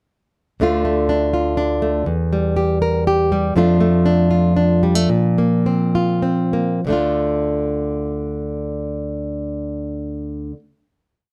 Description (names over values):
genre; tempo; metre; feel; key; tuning
acoustic folk duo or small band; 94-122 BPM; 3/4; straight; D minor; A4 = 440 Hz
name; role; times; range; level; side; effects
nylon-string guitar; solo; 0.6-10.6 s; D2 to Bb4; -19 LUFS; equal; none
room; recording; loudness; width
moderate studio reverb, RT60 0.6 s; none; -19 LUFS; mono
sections
0.6-6.8 interlude; 6.8-10.6 final chord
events
slowing down 3.6-6.8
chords
0.6 Dm; 2.1 Edim; 3.6 F6; 5.1 Bbsus2; 6.8 Dm